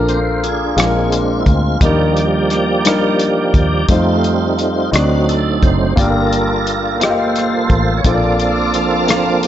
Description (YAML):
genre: slow gospel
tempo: 58 BPM (dotted quarters)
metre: 6/8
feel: straight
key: Bb major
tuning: A4 = 440 Hz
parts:
  - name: warm upright piano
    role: accompaniment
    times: 0.0-9.5 s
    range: G2 to F5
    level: -18 LUFS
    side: left 2 dB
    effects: none
  - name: tonewheel organ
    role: sustained chords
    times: 0.0-9.5 s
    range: F3 to D5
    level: -17 LUFS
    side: right 3 dB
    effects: slow rotary speaker, overdrive, chorus vibrato
  - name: fingered electric bass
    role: bass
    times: 0.0-9.5 s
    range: F#1 to F2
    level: -19 LUFS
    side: equal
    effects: none
  - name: warm soul drum kit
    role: drums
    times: 0.1-9.5 s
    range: hi-hat, kick drum, rim click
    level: -17 LUFS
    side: equal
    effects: none
  - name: warm studio string section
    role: sustained chords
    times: 8.1-9.5 s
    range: F5 to D6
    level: -24 LUFS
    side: left 2 dB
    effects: none
room: light reverb, small room ambience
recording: nothing above 7.7 kHz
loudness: -12 LUFS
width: side -11 dB against mid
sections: 0.0-9.5 A section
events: tonewheel organ solo 0.0-9.5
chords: 0.0 Bbmaj7; 0.8 Bb7; 1.8 Ebmaj7; 3.9 F7; 4.9 D7b9; 6.0 Gm7; 8.0 Bbmaj7